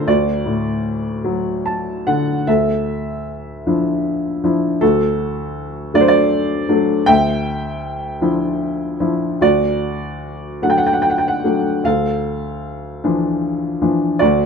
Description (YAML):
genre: classical, lyrical solo piano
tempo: 49-54 BPM (dotted quarters)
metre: 6/8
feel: rubato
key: unclear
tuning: A4 = 439 Hz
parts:
  - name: warm baby grand piano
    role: solo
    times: 0.0-14.5 s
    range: D2 to A5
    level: -16 LUFS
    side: equal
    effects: none
room: light reverb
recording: close, detailed microphones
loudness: -16 LUFS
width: side -6 dB against mid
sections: 0.0-2.5 A section; 2.5-14.5 B section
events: grand piano fill 1.2-2.5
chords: 0.1 D; 2.5 Dmadd9; 4.8 D; 7.1 Dmadd9; 9.4 D; 11.8 Dmadd9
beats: | 0.07 1.24 | 2.47 3.67 | 4.82 5.95 | 7.07 8.22 | 9.41 10.62 | 11.85 13.04 | 14.21